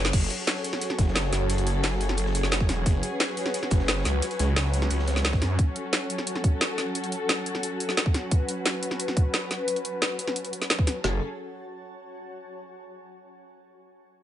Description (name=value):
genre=dark technical drum and bass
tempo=176 BPM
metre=4/4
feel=straight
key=F# minor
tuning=A4 = 441 Hz
part: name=warm studio string section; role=sustained chords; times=0.0-11.2 s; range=F#3 to B4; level=-32 LUFS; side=left 2 dB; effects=sidechain pumping, low-pass filter
part: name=snarling distorted saw bass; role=bass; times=0.0-5.6, 11.0-11.2 s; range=E1 to F#2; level=-26 LUFS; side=equal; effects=distortion, overdrive
part: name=drum and bass drum kit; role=drums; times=0.0-10.9 s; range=crash cymbal, hi-hat, snare drum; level=-27 LUFS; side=equal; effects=overdrive
part: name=granular cloud pad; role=texture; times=0.0-12.4 s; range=F#4 to A5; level=-37 LUFS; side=equal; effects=built-in reverb, sidechain pumping
part: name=crunchy breakbeat drum kit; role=drums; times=0.1-5.5 s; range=hi-hat, snare drum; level=-41 LUFS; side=equal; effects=none
part: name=drum and bass drum kit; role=drums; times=0.1-11.1 s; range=kick drum, snare drum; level=-23 LUFS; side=equal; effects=none
room=light reverb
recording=nothing above 10.8 kHz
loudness=-23 LUFS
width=side -11 dB against mid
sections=0.1-11.0 A section; 11.0-12.4 B section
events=band accent 0.0; fade-out on ambient pad 0.1-11.0; filter sweep on string section 0.1-11.0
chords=0.1 F#m; 11.0 F#5